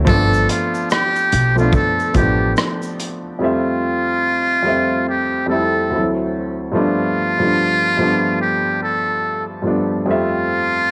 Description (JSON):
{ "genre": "lo-fi hip hop", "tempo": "72 BPM", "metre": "4/4", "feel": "swing 61% on 16ths", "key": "F lydian", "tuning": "A4 = 439 Hz", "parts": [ { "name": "warm upright piano", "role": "accompaniment", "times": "0.0-10.9 s", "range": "D2 to E5", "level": "-22 LUFS", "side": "equal", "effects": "cassette tape, low-pass filter" }, { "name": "upright bass", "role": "bass", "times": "0.0-2.5 s", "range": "G1 to B1", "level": "-21 LUFS", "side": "equal", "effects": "none" }, { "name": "trumpet with metal mute", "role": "melody", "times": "0.1-10.9 s", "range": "F4 to A4", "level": "-21 LUFS", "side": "equal", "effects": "low-pass filter, cassette tape" }, { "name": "crunchy breakbeat drum kit", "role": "drums", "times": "0.1-3.2 s", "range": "hi-hat, kick drum, rim click, shaker", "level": "-22 LUFS", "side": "equal", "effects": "cassette tape" } ], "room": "moderate spring reverb, RT60 1.7 s", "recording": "home recording on cassette", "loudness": "-18 LUFS", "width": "mono", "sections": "0.0-3.4 A section; 3.4-10.9 B section", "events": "none", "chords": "0.1 G9; 3.4 Fmaj9; 5.9 D7; 6.7 G9; 10.1 Fmaj9" }